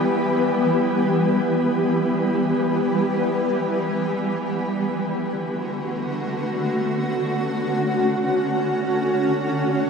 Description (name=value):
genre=ambient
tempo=free time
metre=none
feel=none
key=unclear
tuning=A4 = 441 Hz
part: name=shimmering ambient pad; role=solo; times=0.0-9.9 s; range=D3 to C#5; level=-20 LUFS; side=equal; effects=chorus, built-in reverb, ping-pong delay
room=wet shimmer reverb, RT60 6.3 s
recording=none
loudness=-20 LUFS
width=side -5 dB against mid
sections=0.0-9.9 A section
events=none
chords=0.0 Em; 4.4 Dmaj7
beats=free time